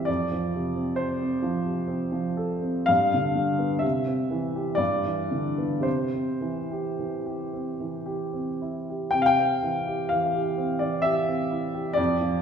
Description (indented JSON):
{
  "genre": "classical, romantic nocturne for solo piano",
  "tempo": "53-67 BPM",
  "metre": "3/4",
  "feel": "rubato",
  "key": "C major",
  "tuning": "A4 = 440 Hz",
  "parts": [
    { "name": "warm baby grand piano", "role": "solo", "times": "0.0-12.4 s", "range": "F2 to G5", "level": "-24 LUFS", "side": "equal", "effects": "none" }
  ],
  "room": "wet recital hall reverb, RT60 1.8 s",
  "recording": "heard from further back in the room",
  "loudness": "-24 LUFS",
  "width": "side -7 dB against mid",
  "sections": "0.0-9.1 A section; 9.1-12.4 A section",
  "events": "none",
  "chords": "0.1 F; 2.9 G; 3.8 C; 4.8 G6; 5.8 C",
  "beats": "| 0.08 0.99 1.90 | 2.90 3.84 4.80 | 5.85 6.98 8.07 | 9.12 10.10 11.05 | 11.98"
}